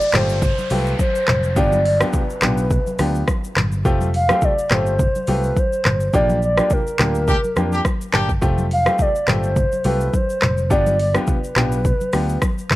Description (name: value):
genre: afrobeats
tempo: 105 BPM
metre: 4/4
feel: swing 55% on 16ths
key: unclear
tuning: A4 = 442 Hz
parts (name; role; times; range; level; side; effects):
- hollow clarinet-like synth lead; melody; 0.0-12.7 s; Bb4 to F5; -21 LUFS; equal; chorus
- afro-pop drum kit; drums; 0.0-12.8 s; handclaps, hi-hat, kick drum, rim click, shaker, toms; -20 LUFS; equal; none
- downlifter; sound effects; 0.0-3.9 s; none; -32 LUFS; equal; none
- clear grand piano; accompaniment; 0.1-12.4 s; A3 to G4; -25 LUFS; equal; none
- fingered electric bass; bass; 0.1-12.8 s; F1 to F2; -21 LUFS; equal; none
- congas; percussion; 0.1-12.8 s; none; -28 LUFS; left 2 dB; none
- warm horn section; second line; 7.3-8.3 s; Bb3 to G4; -23 LUFS; left 1 dB; none
room: little or no reverb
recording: dry, gritty hardware recording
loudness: -16 LUFS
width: side -17 dB against mid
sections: 0.0-12.8 A section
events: band accent 6.1-8.4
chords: 0.0 Fadd9; 1.6 G7; 3.9 Fadd9; 6.1 Bb6; 8.4 Fadd9; 10.7 G7